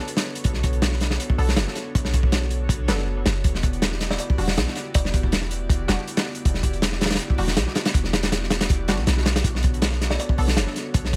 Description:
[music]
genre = drum and bass, jungle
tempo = 160 BPM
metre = 4/4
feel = straight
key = B minor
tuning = A4 = 438 Hz
[part]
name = airy breathy pad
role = sustained chords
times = 0.0-11.2 s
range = B3 to D5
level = -36 LUFS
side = equal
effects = chorus
[part]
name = crunchy breakbeat drum kit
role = drums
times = 0.1-11.2 s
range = hi-hat, kick drum, snare drum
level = -24 LUFS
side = equal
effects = none
[part]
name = warm 808-style bass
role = bass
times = 0.4-11.2 s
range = E1 to B1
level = -27 LUFS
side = equal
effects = none
[part]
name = filtered dub chord stab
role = stabs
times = 1.4-10.5 s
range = G3 to A4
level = -36 LUFS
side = equal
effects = chorus, dub echo
[part]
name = buzzing kalimba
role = melody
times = 4.1-5.3, 10.1-10.3 s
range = D5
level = -38 LUFS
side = equal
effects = dub echo
[sound]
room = studio reverb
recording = none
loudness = -22 LUFS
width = mono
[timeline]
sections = 0.0-11.2 A section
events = none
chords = 0.0 Bm7; 3.4 Em9; 9.4 Bm7

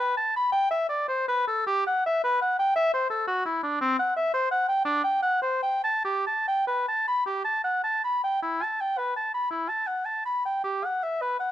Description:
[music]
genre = classical, baroque-style fantasia for unaccompanied oboe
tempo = 47-58 BPM (dotted quarters)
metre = 6/8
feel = rubato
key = E minor, G major from 3.8 s, E minor from 8.4 s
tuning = A4 = 440 Hz
[part]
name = warm oboe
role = solo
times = 0.0-11.5 s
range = C4 to B5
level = -24 LUFS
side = equal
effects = none
[sound]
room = light reverb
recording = dark, warm production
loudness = -24 LUFS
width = side -12 dB against mid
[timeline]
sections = 0.0-8.4 A section; 8.4-11.5 A section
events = none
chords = none

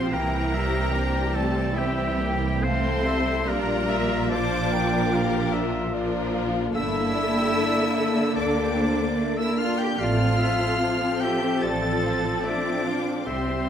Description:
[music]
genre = cinematic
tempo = 74 BPM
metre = 4/4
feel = rubato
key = unclear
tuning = A4 = 440 Hz
[part]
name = rich symphonic violin section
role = melody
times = 0.0-13.7 s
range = G5 to A6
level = -33 LUFS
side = left 2 dB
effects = none
[part]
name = warm clarinet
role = second line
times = 0.0-13.7 s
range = Bb4 to G5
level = -32 LUFS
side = left 1 dB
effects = none
[part]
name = warm oboe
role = second line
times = 0.0-13.7 s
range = G4 to A5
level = -31 LUFS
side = right 1 dB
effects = none
[part]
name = warm symphonic violin section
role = second line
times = 0.0-13.7 s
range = G3 to C5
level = -31 LUFS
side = left 4 dB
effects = none
[part]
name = warm symphonic viola section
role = accompaniment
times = 0.0-13.7 s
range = D3 to E5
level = -28 LUFS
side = right 1 dB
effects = none
[part]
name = mellow French horn section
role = sustained chords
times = 0.0-13.7 s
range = E3 to F4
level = -30 LUFS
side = left 3 dB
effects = none
[part]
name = rich chamber cello section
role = bass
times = 0.0-13.7 s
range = G3 to A4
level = -31 LUFS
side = right 2 dB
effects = none
[part]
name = rich symphonic double bass section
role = bass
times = 0.0-13.7 s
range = G1 to D2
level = -29 LUFS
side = right 2 dB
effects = none
[sound]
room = wet scoring stage reverb, RT60 1.9 s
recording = none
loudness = -21 LUFS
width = side -8 dB against mid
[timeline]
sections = 0.0-13.7 A section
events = none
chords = 0.1 C; 3.5 Bb; 6.7 Gmadd9; 10.0 F/A

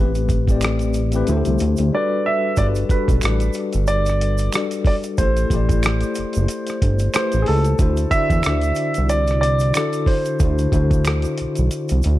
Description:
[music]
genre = R&B, neo-soul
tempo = 92 BPM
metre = 4/4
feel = swing 56% on 16ths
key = unclear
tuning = A4 = 442 Hz
[part]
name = tine electric piano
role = accompaniment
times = 0.0-12.2 s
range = A2 to D5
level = -23 LUFS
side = left 4 dB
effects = medium tremolo
[part]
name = fat analog bass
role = bass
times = 0.0-12.2 s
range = F#1 to E2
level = -19 LUFS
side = equal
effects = none
[part]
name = tube shaker and finger snaps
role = percussion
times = 0.1-12.2 s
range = none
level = -33 LUFS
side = right 6 dB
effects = none
[part]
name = dusty soul sampler-style drum kit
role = drums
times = 0.2-12.2 s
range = hi-hat, kick drum, rim click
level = -21 LUFS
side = equal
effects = none
[part]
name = warm baby grand piano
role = melody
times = 1.9-11.3 s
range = G#4 to E5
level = -23 LUFS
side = right 2 dB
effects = none
[sound]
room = studio ambience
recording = dark, warm production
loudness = -16 LUFS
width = side -15 dB against mid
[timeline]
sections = 0.0-2.6 A section; 2.6-12.2 B section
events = silent gap 1.9-2.6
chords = 0.0 Am9; 1.3 D9sus4; 1.9 Gmaj9; 5.2 Am7; 7.8 D7

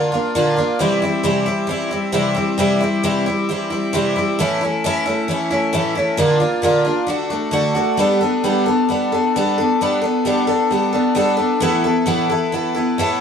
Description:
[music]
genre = rock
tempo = 133 BPM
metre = 4/4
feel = straight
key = unclear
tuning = A4 = 444 Hz
[part]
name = picked twelve-string acoustic guitar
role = solo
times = 0.0-13.2 s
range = A2 to A4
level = -16 LUFS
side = equal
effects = none
[sound]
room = moderate stone room reverb, RT60 1.1 s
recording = band playing live in one room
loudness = -16 LUFS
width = side -7 dB against mid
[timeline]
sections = 0.0-8.0 A section; 8.0-13.2 B section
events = none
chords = 0.0 Bb; 0.8 C; 4.4 A; 6.2 Bb; 7.1 D; 8.0 Gadd9; 11.6 Asus2

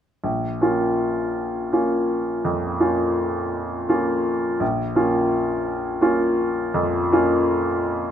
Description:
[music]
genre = classical, romantic nocturne for solo piano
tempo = 49-57 BPM (dotted quarters)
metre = 12/8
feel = rubato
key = Bb minor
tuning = A4 = 441 Hz
[part]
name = clear upright piano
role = solo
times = 0.2-8.1 s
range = Bb1 to F4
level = -19 LUFS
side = equal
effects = none
[sound]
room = light reverb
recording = close, detailed microphones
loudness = -19 LUFS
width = side -9 dB against mid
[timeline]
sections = 0.2-8.1 A section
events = none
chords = 0.2 Bbm

